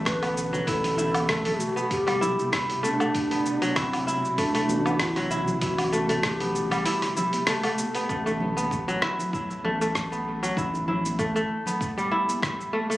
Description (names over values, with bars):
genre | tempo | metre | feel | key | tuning
organic downtempo | 97 BPM | 4/4 | swing 54% on 16ths | A dorian | A4 = 440 Hz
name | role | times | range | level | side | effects
breathy mellow low ney | melody | 0.0-7.5 s | C4 to B4 | -30 LUFS | equal | digital delay
ethereal airy pad | sustained chords | 0.0-8.1 s | B2 to A4 | -35 LUFS | left 1 dB | ensemble chorus, built-in reverb, sidechain pumping
kora | arpeggios | 0.0-13.0 s | F#3 to E4 | -26 LUFS | equal | digital delay
round analog bass | bass | 0.0-11.4 s | A1 | -32 LUFS | equal | sidechain pumping
dusty soul sampler-style drum kit | drums | 0.1-13.0 s | cabasa, hi-hat, rim click, woodblock | -29 LUFS | equal | small room ambience
electronic kick drum | drums | 0.1-12.6 s | none | -34 LUFS | equal | small room ambience
congas and bongos | percussion | 0.5-12.9 s | none | -36 LUFS | left 1 dB | none
room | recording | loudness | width
light reverb, small room ambience | recorded on a phone in the room, club reverb | -23 LUFS | side -16 dB against mid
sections
0.0-8.1 A section; 8.1-13.0 B section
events
none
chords
0.0 Bm7/A; 0.7 Am9; 3.1 D13; 5.6 Am9; 8.1 B5/A; 10.6 Asus2